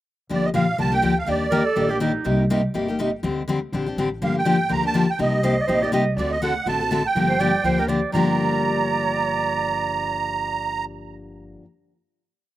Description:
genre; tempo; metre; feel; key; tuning
acoustic string swing (jazz manouche); 245 BPM; 4/4; swing 57% on 8ths; G minor; A4 = 437 Hz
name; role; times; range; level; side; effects
musette accordion; melody; 0.3-2.0, 4.2-10.8 s; D5 to Bb5; -23 LUFS; right 4 dB; none
picked steel-string acoustic guitar; accompaniment; 0.3-11.7 s; G2 to A4; -23 LUFS; left 2 dB; slapback echo
upright bass; bass; 0.3-11.5 s; G1 to Eb2; -28 LUFS; equal; none
warm clarinet; second line; 1.5-2.5, 5.4-10.8 s; Eb4 to Eb5; -26 LUFS; right 4 dB; slapback echo
room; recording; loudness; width
little or no reverb; recorded outdoors, with no room sound; -19 LUFS; side -14 dB against mid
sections
0.3-8.1 A section; 8.1-10.1 final chord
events
none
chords
0.3 Gm7; 1.3 Ebmaj7; 2.3 Cm7; 3.2 D7sus4; 4.2 Gm7; 5.2 Cm7; 6.2 D7; 7.2 Gm7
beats
| 0.30 0.54 0.79 1.03 | 1.27 1.52 1.76 2.01 | 2.25 2.50 2.74 2.99 | 3.23 3.48 3.72 3.97 | 4.21 4.46 4.71 4.95 | 5.20 5.44 5.68 5.93 | 6.17 6.42 6.66 6.91 | 7.15 7.40 7.64 7.89 | 8.13 8.38 8.62 8.87 | 9.11 9.35 9.60 9.84

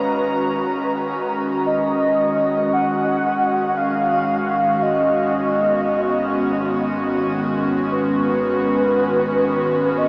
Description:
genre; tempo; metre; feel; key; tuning
ambient; free time; none; none; G# dorian; A4 = 440 Hz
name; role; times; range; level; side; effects
warm velvety synth lead; melody; 0.0-10.1 s; B4 to F#5; -23 LUFS; equal; chorus, shimmer reverb, tape echo
airy breathy pad; sustained chords; 0.0-10.1 s; D#3 to A#5; -23 LUFS; equal; chorus, shimmer reverb
round analog bass; bass; 0.0-10.1 s; G#1; -41 LUFS; equal; none
room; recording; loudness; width
wet huge ambient reverb, RT60 8.1 s; cassette tape, small speaker sound; -20 LUFS; mono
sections
0.0-1.7 A section; 1.7-10.1 B section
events
none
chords
0.0 G#m7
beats
free time

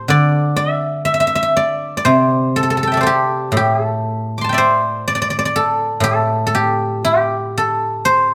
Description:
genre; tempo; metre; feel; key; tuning
chinese traditional, Chinese solo plucked strings; 61 BPM; 4/4; rubato; D shang mode; A4 = 440 Hz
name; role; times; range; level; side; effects
guzheng; solo; 0.0-8.3 s; A2 to D6; -16 LUFS; equal; none
room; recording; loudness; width
light reverb; close, detailed microphones; -17 LUFS; mono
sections
0.0-8.3 A section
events
none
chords
none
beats
| 0.10 1.08 2.07 3.04 | 4.03 5.02 6.00 7.01 | 8.02

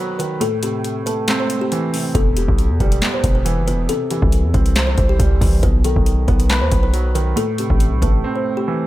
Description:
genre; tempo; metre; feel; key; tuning
hip hop, trap; 138 BPM; 4/4; half-time; unclear; A4 = 440 Hz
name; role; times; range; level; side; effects
kalimba; melody; 0.0-8.9 s; G4 to C5; -25 LUFS; left 3 dB; none
dark baby grand piano; accompaniment; 0.0-8.9 s; E2 to C5; -22 LUFS; right 2 dB; none
booming analog drum machine; drums; 0.2-8.2 s; handclaps, hi-hat, kick drum, snare drum; -18 LUFS; equal; none
hard-hitting 808-style bass; bass; 2.1-8.2 s; E1 to E2; -18 LUFS; equal; none
room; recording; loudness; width
digital ambience; none; -15 LUFS; side -15 dB against mid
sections
0.0-8.9 A section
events
break 0.0-2.2, 8.2-8.9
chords
0.4 Am; 2.2 Em; 3.9 C; 5.6 B; 7.4 Am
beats
| 0.41 0.85 1.28 1.72 | 2.15 2.58 3.02 3.46 | 3.89 4.33 4.76 5.19 | 5.63 6.06 6.50 6.93 | 7.37 7.80 8.24 8.67

